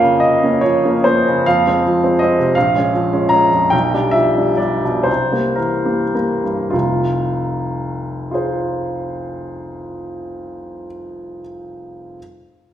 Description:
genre	classical, romantic character piece for solo piano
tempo	33-56 BPM (dotted quarters)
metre	6/8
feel	rubato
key	F minor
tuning	A4 = 440 Hz
part	clear baby grand piano	solo	0.0-12.2 s	F1 to Bb5	-15 LUFS	equal	none
room	wet recital hall reverb, RT60 1.5 s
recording	recorded in a church or concert hall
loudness	-14 LUFS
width	side -10 dB against mid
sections	0.0-6.7 A section; 6.7-9.9 B section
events	slowing down 0.2-6.7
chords	0.0 Bbm; 1.4 Fm; 2.6 Bbm7; 3.7 G7/B; 5.1 C7; 6.7 Fm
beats	0.20 | 1.45 2.55 | 3.73 5.08 | 6.73 8.32

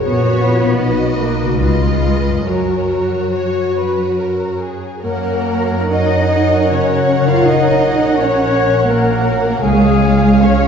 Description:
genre	classical, slow romantic movement for symphony orchestra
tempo	67-85 BPM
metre	3/4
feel	rubato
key	F# major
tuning	A4 = 438 Hz
part	rich studio violin section	melody	0.0-10.7 s	C#5 to F#5	-28 LUFS	left 2 dB	none
part	rich studio violin section	second line	0.0-10.7 s	G#4 to E#5	-23 LUFS	left 2 dB	none
part	warm studio viola section	accompaniment	0.0-10.7 s	E#4 to C#5	-22 LUFS	equal	none
part	mellow French horn section	sustained chords	0.0-10.7 s	D#4 to C#5	-22 LUFS	left 1 dB	none
part	concert harp	arpeggios	0.0-10.7 s	F#2 to C#5	-22 LUFS	left 7 dB	none
part	rich studio double bass section	bass	0.0-10.7 s	A#1 to F#2	-20 LUFS	right 3 dB	none
part	warm studio cello section	bass	0.0-10.7 s	F#3 to E#4	-18 LUFS	right 2 dB	none
part	bright small flute group	second line	5.0-10.7 s	G#4 to E#5	-21 LUFS	left 2 dB	none
part	clear trumpet	stabs	5.0-10.7 s	E#5 to F#5	-22 LUFS	right 2 dB	none
room	wet scoring stage reverb, RT60 2.0 s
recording	heard from further back in the room, nothing above 7.7 kHz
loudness	-12 LUFS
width	side -7 dB against mid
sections	0.0-5.0 A section; 5.0-10.7 B section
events	none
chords	0.0 F#/A#; 0.8 Bmaj7; 1.6 C#9; 2.5 F#; 7.4 F#/A#; 9.6 C#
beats	| 0.04 0.79 1.59 | 2.46 3.34 4.19 | 5.03 5.89 6.70 | 7.45 8.17 8.88 | 9.62 10.41

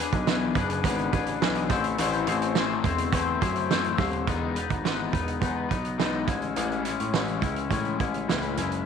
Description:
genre	indie pop, bedroom pop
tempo	105 BPM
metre	4/4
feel	straight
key	unclear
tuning	A4 = 440 Hz
part	electric guitar at the edge of break-up	accompaniment	0.0-8.9 s	A2 to C5	-27 LUFS	left 10 dB	lush chorus, vibrato effect
part	warm grand piano	bass	0.1-8.8 s	D#1 to A2	-30 LUFS	right 1 dB	none
part	loose indie drum kit	drums	0.1-8.8 s	hi-hat, kick drum, snare drum	-29 LUFS	right 7 dB	none
room	light reverb, small room ambience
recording	1960s-style stereo with parts hard left and right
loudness	-24 LUFS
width	side -7 dB against mid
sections	0.0-4.3 A section; 4.3-8.9 B section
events	none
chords	0.0 E7; 1.7 Am; 4.3 Emaj7; 6.3 Amaj7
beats	0.27 0.84 1.41 | 1.98 2.56 3.13 3.70 | 4.27 4.85 5.42 5.99 | 6.56 7.14 7.71 8.28 | 8.86

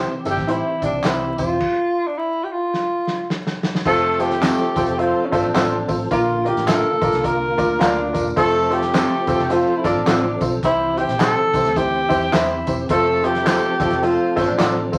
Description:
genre	uptempo 1960s-style soul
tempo	106 BPM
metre	4/4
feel	swing 60% on 8ths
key	F major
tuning	A4 = 439 Hz
part	warm upright piano	accompaniment	0.0-15.0 s	Bb2 to F5	-25 LUFS	equal	none
part	mellow tonewheel organ	sustained chords	0.0-15.0 s	D3 to A4	-28 LUFS	equal	fast rotary speaker, chorus vibrato
part	electric guitar through a small old amp	stabs	0.0-14.8 s	C4 to C5	-29 LUFS	equal	none
part	vintage muted fingered electric bass	bass	0.0-15.0 s	E1 to E2	-32 LUFS	equal	none
part	breathy tenor saxophone	melody	0.3-14.9 s	Db4 to Bb4	-23 LUFS	equal	none
part	crunchy breakbeat drum kit	drums	0.3-15.0 s	crash cymbal, hi-hat, kick drum, snare drum	-28 LUFS	equal	none
part	tambourine and handclaps	percussion	0.3-15.0 s	none	-30 LUFS	equal	none
part	clear horn section	second line	3.9-14.5 s	F3 to D5	-29 LUFS	equal	none
room	wet studio reverb, RT60 0.7 s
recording	vinyl crackle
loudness	-19 LUFS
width	mono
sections	0.0-3.9 A section; 3.9-15.0 B section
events	drum fill 2.7-3.9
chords	0.0 C; 1.6 N.C.; 3.9 F; 6.1 Bb; 8.4 F; 10.6 C; 12.9 F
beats	0.48 1.04 | 1.60 2.17 2.73 3.30 | 3.86 4.42 4.99 5.55 | 6.11 6.68 7.24 7.81 | 8.37 8.94 9.50 10.07 | 10.63 11.20 11.76 12.33 | 12.89 13.46 14.03 14.59

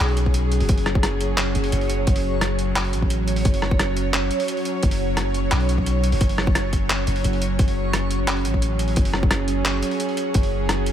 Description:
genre	half-time drum and bass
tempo	174 BPM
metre	4/4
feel	half-time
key	unclear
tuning	A4 = 440 Hz
part	bowed-like drone	sustained chords	0.0-10.9 s	F#3 to C#5	-25 LUFS	right 1 dB	built-in reverb, sidechain pumping
part	long sustained 808-style bass	bass	0.0-10.9 s	F#1 to B1	-23 LUFS	equal	none
part	boom bap sampler-style drum kit	drums	0.0-10.9 s	handclaps, hi-hat, rim click	-26 LUFS	equal	none
part	backwards swelling texture	texture	0.1-10.9 s	C#5	-32 LUFS	right 2 dB	built-in reverb
part	electronic kick drum	drums	0.3-10.4 s	none	-20 LUFS	equal	none
room	light reverb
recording	none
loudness	-19 LUFS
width	side -10 dB against mid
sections	0.0-10.9 A section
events	none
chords	0.0 F#5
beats	0.00 0.35 | 0.69 1.04 1.38 1.73 | 2.07 2.42 2.76 3.11 | 3.45 3.80 4.14 4.49 | 4.83 5.17 5.52 5.87 | 6.21 6.55 6.90 7.24 | 7.59 7.93 8.28 8.62 | 8.97 9.31 9.66 10.00 | 10.35 10.69

